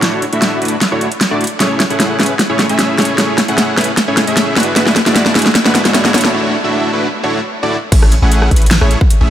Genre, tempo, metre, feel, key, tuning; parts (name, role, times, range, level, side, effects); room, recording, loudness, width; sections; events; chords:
future bass; 152 BPM; 4/4; half-time; A major; A4 = 442 Hz
dense compressed supersaw; riff; 0.0-9.3 s; G#3 to F#5; -15 LUFS; equal; cassette tape, sidechain pumping, low-pass filter, dub echo
long sustained 808-style bass; bass; 0.0-9.3 s; D1 to E2; -14 LUFS; equal; sidechain pumping, high-pass filter
big-room dance drum kit; drums; 0.0-9.2 s; crash cymbal, hi-hat, rim click, snare drum; -14 LUFS; equal; overdrive, studio reverb
electronic kick drum; drums; 7.9-9.1 s; -10 LUFS; equal; overdrive, studio reverb
moderate huge ambient reverb, RT60 4.9 s; -10 LUFS; side -11 dB against mid
0.0-7.9 A section; 7.9-9.3 B section
build-up 0.0-7.9; drum fill 0.0-6.3; break 6.3-7.9; drop 7.9-9.3
0.0 Dmaj9; 1.6 Amaj7; 4.6 E9; 6.1 Dmaj9; 7.9 Amaj7